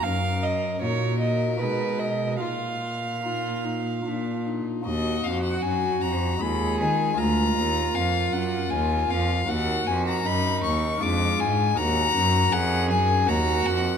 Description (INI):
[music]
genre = classical, baroque-style sonata movement with continuo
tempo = 78 BPM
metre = 3/4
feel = rubato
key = Eb minor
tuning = A4 = 441 Hz
[part]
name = rich violin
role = melody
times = 0.0-14.0 s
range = D4 to D6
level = -27 LUFS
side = left 6 dB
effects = none
[part]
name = rich violin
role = second line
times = 0.0-14.0 s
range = Eb4 to F5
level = -29 LUFS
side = right 5 dB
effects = none
[part]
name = pipe organ, stopped flute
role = accompaniment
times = 0.0-14.0 s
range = D2 to Bb4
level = -28 LUFS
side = left 1 dB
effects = none
[part]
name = clear cello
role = bass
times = 0.0-14.0 s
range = D2 to Eb3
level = -28 LUFS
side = right 1 dB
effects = none
[sound]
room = moderate scoring stage reverb, RT60 1.9 s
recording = none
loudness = -22 LUFS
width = side -7 dB against mid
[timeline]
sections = 0.0-4.9 A section; 4.9-14.0 B section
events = none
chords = 0.0 Ebm/Gb; 1.6 Abm/Cb; 2.4 Bbsus4; 4.1 Bb; 4.9 Ebm; 6.4 Fm7b5/Eb; 7.2 Bb7/D; 9.5 Ebm; 11.0 Ddim/F; 11.8 Ebm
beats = | 0.05 0.81 1.60 | 2.40 3.23 4.05 | 4.86 5.64 6.42 | 7.19 7.96 8.72 | 9.49 10.26 11.02 | 11.78 12.53 13.29